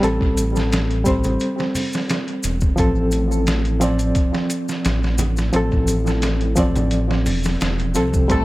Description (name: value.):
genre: trip hop.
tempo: 87 BPM.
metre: 4/4.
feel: swing 53% on 16ths.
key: unclear.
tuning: A4 = 441 Hz.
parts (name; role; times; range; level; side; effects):
barky reed electric piano; accompaniment; 0.0-8.4 s; F3 to D5; -21 LUFS; equal; overdrive, fast tremolo, low-pass filter, tape echo.
dark detuned saw bass; bass; 0.0-8.4 s; E1 to C2; -21 LUFS; equal; none.
trip hop sampler-style drum kit; drums; 0.0-8.4 s; hi-hat, kick drum, snare drum; -23 LUFS; equal; small room ambience, tape echo.
maracas and congas; percussion; 0.0-8.4 s; none; -29 LUFS; equal; tape echo.
clear symphonic string section; sustained chords; 8.3-8.4 s; A3 to A4; -23 LUFS; left 2 dB; vintage 12-bit sampler grit.
room: studio reverb.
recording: echo-heavy mix.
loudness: -17 LUFS.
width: side -18 dB against mid.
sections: 0.0-8.4 A section.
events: none.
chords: 0.0 Am7; 2.8 F/A.